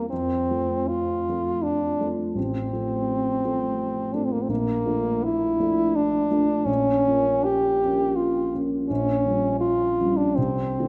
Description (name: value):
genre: classical, romantic duo for French horn and grand piano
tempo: 72-88 BPM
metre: 3/4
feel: rubato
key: F major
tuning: A4 = 440 Hz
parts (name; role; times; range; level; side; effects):
- clear French horn; melody; 0.0-10.9 s; Bb3 to G4; -25 LUFS; equal; none
- dark baby grand piano; accompaniment; 0.0-10.9 s; A1 to D4; -29 LUFS; equal; none
room: wet scoring stage reverb, RT60 2.1 s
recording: none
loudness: -24 LUFS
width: mono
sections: 0.0-10.9 A section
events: none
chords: 0.1 F; 2.4 F/A; 4.5 Bbmaj7; 6.7 Bbm; 8.9 Gm7b5/Bb; 10.4 C69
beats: | 0.11 0.90 1.65 | 2.37 3.09 3.80 | 4.49 5.26 5.97 | 6.68 7.47 8.19 | 8.90 9.61 10.37